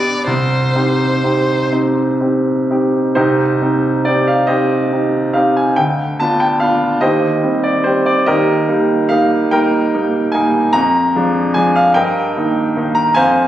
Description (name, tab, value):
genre	classical, romantic duo for violin and grand piano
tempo	41-50 BPM (dotted quarters)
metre	6/8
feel	rubato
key	C minor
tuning	A4 = 441 Hz
part	clear violin	melody	0.0-1.7 s	C5 to D5	-19 LUFS	equal	none
part	clear baby grand piano	accompaniment	0.0-13.5 s	C2 to Bb5	-12 LUFS	equal	none
room	moderate concert hall reverb, RT60 1.9 s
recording	recorded on a phone in the room, club reverb, compression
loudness	-12 LUFS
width	side -12 dB against mid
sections	0.0-3.2 A section; 3.2-13.5 A section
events	none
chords	0.3 Cm; 5.8 Bdim/D; 7.0 Cm/Eb; 8.3 Eb; 10.8 Ddim/F; 12.0 Eb/G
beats	| 0.28 1.73 | 3.17 4.49 | 5.78 7.02 | 8.28 9.53 | 10.75 11.96 | 13.18